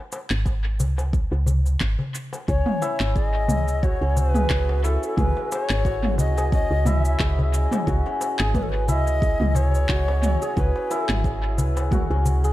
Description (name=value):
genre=organic downtempo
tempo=89 BPM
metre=4/4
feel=swing 55% on 16ths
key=C# minor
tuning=A4 = 440 Hz
part: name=organic electronic drum kit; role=drums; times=0.1-12.5 s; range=handclaps, shaker, toms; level=-28 LUFS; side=equal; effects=analog delay
part: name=darbuka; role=percussion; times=0.1-12.4 s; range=none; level=-30 LUFS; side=left 1 dB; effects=analog delay
part: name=woody FM bass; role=bass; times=0.3-12.5 s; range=G#1 to C#2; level=-22 LUFS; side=equal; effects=tube saturation, sidechain pumping
part: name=electronic kick drum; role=drums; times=0.5-12.1 s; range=none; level=-25 LUFS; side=equal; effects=none
part: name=breathy Native American-style cedar flute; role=melody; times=2.5-11.2 s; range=A4 to E5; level=-28 LUFS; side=left 1 dB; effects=tape echo
part: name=santur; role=arpeggios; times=2.5-12.5 s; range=C#4 to G#4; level=-28 LUFS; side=left 1 dB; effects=dub echo
room=light reverb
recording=echo-heavy mix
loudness=-20 LUFS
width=side -15 dB against mid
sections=0.0-12.5 A section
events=none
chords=0.0 C#5; 2.5 C#m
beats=0.46 1.13 1.81 | 2.48 3.15 3.83 4.50 | 5.18 5.85 6.53 7.20 | 7.87 8.55 9.22 9.90 | 10.57 11.24 11.92